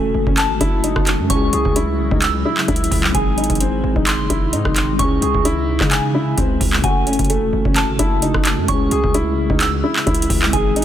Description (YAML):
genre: hip hop, trap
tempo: 130 BPM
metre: 4/4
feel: half-time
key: C# harmonic minor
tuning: A4 = 439 Hz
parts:
  - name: dark grand piano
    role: melody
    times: 0.0-10.8 s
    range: A3 to G#4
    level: -22 LUFS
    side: left 1 dB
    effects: low-pass filter
  - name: mellow tine electric piano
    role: accompaniment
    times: 0.0-10.8 s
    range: G#3 to A4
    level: -24 LUFS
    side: left 1 dB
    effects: medium stereo tremolo, low-pass filter
  - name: granular cloud pad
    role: sustained chords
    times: 0.0-10.8 s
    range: B#2 to F#4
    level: -26 LUFS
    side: equal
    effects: built-in reverb
  - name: hard-hitting 808-style bass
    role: bass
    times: 0.0-10.8 s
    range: E1 to C#3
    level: -22 LUFS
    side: equal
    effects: none
  - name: booming analog drum machine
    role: drums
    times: 0.3-10.8 s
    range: handclaps, hi-hat, kick drum, rim click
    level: -19 LUFS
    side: equal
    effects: none
  - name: soft synth bell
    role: second line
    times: 0.4-10.8 s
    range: G#5 to E6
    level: -25 LUFS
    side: right 1 dB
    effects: chorus, phaser, tape echo
room: light reverb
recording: dense, heavily limited modern master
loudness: -15 LUFS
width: side -11 dB against mid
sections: 0.0-10.8 A section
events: none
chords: 0.0 F#madd9; 1.3 C#m; 3.1 G#; 5.0 C#m; 6.8 F#madd9; 8.7 C#m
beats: 0.38 0.84 | 1.30 1.76 2.22 2.68 | 3.15 3.61 4.07 4.53 | 4.99 5.45 5.92 6.38 | 6.84 7.30 7.76 8.22 | 8.68 9.14 9.61 10.07 | 10.53